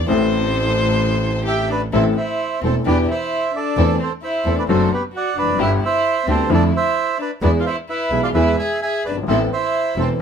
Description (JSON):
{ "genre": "tango", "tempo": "131 BPM", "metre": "4/4", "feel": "rubato", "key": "A minor", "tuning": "A4 = 440 Hz", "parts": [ { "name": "warm violin", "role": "second line", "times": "0.0-10.1 s", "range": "B3 to C5", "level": "-24 LUFS", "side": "left 3 dB", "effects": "none" }, { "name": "bright upright piano", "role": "accompaniment", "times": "0.1-10.2 s", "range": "E1 to A4", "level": "-20 LUFS", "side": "left 3 dB", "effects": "none" }, { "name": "warm studio string section", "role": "stabs", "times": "0.1-10.2 s", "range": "F3 to A4", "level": "-28 LUFS", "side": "right 2 dB", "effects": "none" }, { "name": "rich double bass", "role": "bass", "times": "0.1-10.2 s", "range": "E1 to F2", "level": "-21 LUFS", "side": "right 1 dB", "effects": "none" }, { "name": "bandoneon", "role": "melody", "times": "1.5-10.1 s", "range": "G4 to G#5", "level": "-21 LUFS", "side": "right 4 dB", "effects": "none" } ], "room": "moderate studio reverb, RT60 0.7 s", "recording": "band playing live in one room", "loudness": "-16 LUFS", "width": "side -7 dB against mid", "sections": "0.0-1.9 A section; 1.9-10.2 B section", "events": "violin solo 0.0-1.9", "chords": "0.1 Am; 2.9 Em7; 3.8 Am/E; 4.7 D/F#; 5.6 G; 6.5 Dmadd9/F; 7.4 E; 9.3 Amadd9", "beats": "| 0.07 0.53 0.99 1.46 | 1.93 2.40 2.86 3.31 | 3.77 4.22 4.68 5.13 | 5.59 6.05 6.50 6.96 | 7.42 7.88 8.34 8.81 | 9.28 9.74 10.20" }